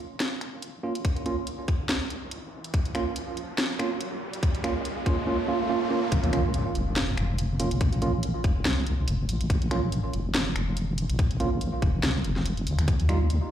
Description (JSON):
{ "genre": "deep dubstep", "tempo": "142 BPM", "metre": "4/4", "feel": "swing 56% on 16ths, half-time", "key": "Bb minor", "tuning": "A4 = 440 Hz", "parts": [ { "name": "deep soft wobble bass", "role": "bass", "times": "0.0-13.4 s", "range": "F1 to Eb2", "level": "-27 LUFS", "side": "equal", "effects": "chorus, high-pass filter" }, { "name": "riser and impact", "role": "sound effects", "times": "1.2-7.8 s", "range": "none", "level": "-34 LUFS", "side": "equal", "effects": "none" }, { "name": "garage drum kit", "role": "drums", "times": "0.2-13.4 s", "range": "finger snaps, hi-hat, snare drum", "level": "-31 LUFS", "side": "left 1 dB", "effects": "overdrive, small room ambience" }, { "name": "tine electric piano", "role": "stabs", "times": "0.8-13.2 s", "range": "G3 to F4", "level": "-31 LUFS", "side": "right 3 dB", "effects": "auto-pan, low-pass filter, dub echo" }, { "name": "electronic kick drum", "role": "drums", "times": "1.0-13.0 s", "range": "none", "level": "-24 LUFS", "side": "left 1 dB", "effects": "overdrive, small room ambience" } ], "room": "light reverb", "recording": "played on a big sound system in a bare room, large studio reverb", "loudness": "-24 LUFS", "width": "side -11 dB against mid", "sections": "0.0-6.1 A section; 6.1-13.5 B section", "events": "build-up 0.0-6.1; riser 1.2-6.1; drop 6.1-13.5; impact 6.1-7.8", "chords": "0.0 Bbm; 6.1 Bb5; 12.9 Ebadd9" }